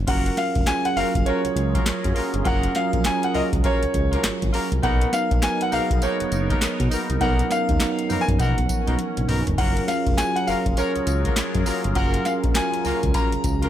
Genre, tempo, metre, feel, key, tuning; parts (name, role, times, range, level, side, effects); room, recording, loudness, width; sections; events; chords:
R&B, new jack swing; 101 BPM; 4/4; swing 62% on 16ths; F# major; A4 = 439 Hz
bell-like tine electric piano; accompaniment; 0.0-13.7 s; E#3 to A#4; -27 LUFS; right 5 dB
smooth synth bass; bass; 0.0-13.7 s; E#1 to B2; -25 LUFS; equal
clear grand piano; melody; 0.1-13.7 s; C#5 to A#5; -26 LUFS; left 1 dB; ping-pong delay
sweeping resonant pad; sustained chords; 0.1-13.7 s; F#3 to A#4; -31 LUFS; equal; chorus
warm horn section; stabs; 0.1-13.7 s; A#3 to A#4; -30 LUFS; left 3 dB; tube saturation
booming analog drum machine; drums; 0.1-13.7 s; crash cymbal, handclaps, hi-hat, kick drum, snare drum, tambourine, toms; -24 LUFS; equal
little or no reverb; -19 LUFS; side -11 dB against mid
0.1-13.7 A section
drum fill 9.0-9.6
0.1 F#maj7; 4.8 Bmaj7; 9.6 F#maj7